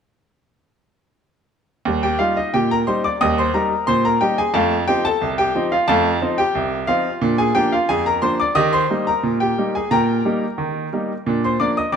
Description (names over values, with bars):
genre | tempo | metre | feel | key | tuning
ragtime piano | 89 BPM | 2/4 | straight | Eb major | A4 = 438 Hz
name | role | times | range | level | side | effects
bright baby grand piano | solo | 1.9-12.0 s | C2 to Eb6 | -16 LUFS | equal | none
room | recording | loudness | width
moderate plate reverb, RT60 3.4 s | none | -16 LUFS | side -7 dB against mid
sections
1.8-12.0 A section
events
none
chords
1.8 Eb; 4.5 F7; 7.2 Bb7; 8.6 Eb; 9.9 Eb/Bb; 11.3 Bb